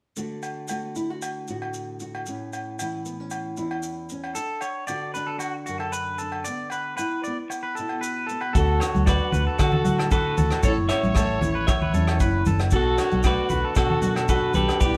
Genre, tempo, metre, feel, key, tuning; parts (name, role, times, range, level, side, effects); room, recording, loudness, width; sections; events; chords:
highlife guitar band; 115 BPM; 4/4; straight; D major; A4 = 440 Hz
nylon-string guitar; accompaniment; 0.2-15.0 s; E2 to F#4; -34 LUFS; equal
maracas; percussion; 0.2-15.0 s; -43 LUFS; equal
agogo bells; percussion; 0.4-14.8 s; -37 LUFS; equal
electric guitar at the edge of break-up; arpeggios; 4.3-15.0 s; F#4 to D5; -32 LUFS; equal
clean electric guitar; melody; 8.6-15.0 s; F#4 to E5; -28 LUFS; equal
growling trumpet; second line; 8.6-15.0 s; F#4 to C#5; -36 LUFS; equal
hollow-body short-scale fingered electric bass; bass; 8.6-14.9 s; F#1 to D3; -27 LUFS; equal
soft brush drum kit; drums; 8.6-14.9 s; hi-hat, kick drum, rim click; -27 LUFS; equal
congas; percussion; 8.9-14.7 s; -30 LUFS; equal
moderate stone room reverb, RT60 1.0 s; band playing live in one room; -24 LUFS; mono
0.2-8.5 A section; 8.5-15.0 B section
0.2 D; 2.3 A; 4.4 Bm7; 6.5 Bm11; 8.5 D; 10.6 A; 12.7 Bm7